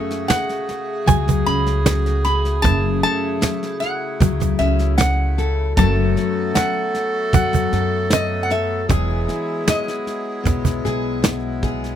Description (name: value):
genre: acoustic folk duo or small band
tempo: 77 BPM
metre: 4/4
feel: straight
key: F# dorian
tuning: A4 = 442 Hz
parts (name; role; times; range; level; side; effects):
- lap resonator guitar; melody; 0.0-11.2 s; D#5 to B5; -23 LUFS; equal; none
- warm clarinet; second line; 0.0-11.6 s; G#4 to A4; -26 LUFS; right 1 dB; none
- fingerpicked steel-string acoustic guitar; accompaniment; 0.0-12.0 s; F#2 to A4; -24 LUFS; left 5 dB; none
- accordion; sustained chords; 0.0-12.0 s; C#3 to F#4; -31 LUFS; left 1 dB; none
- soft brush drum kit; drums; 0.1-11.9 s; kick drum, snare drum; -23 LUFS; equal; none
- cajon; percussion; 0.3-11.7 s; none; -18 LUFS; right 4 dB; none
- upright bass; bass; 1.1-12.0 s; E1 to F#2; -21 LUFS; equal; none
room: little or no reverb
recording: close, detailed microphones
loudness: -17 LUFS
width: side -10 dB against mid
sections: 0.0-12.0 A section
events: none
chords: 0.0 F#madd9; 5.8 B5/F#; 8.9 Emaj7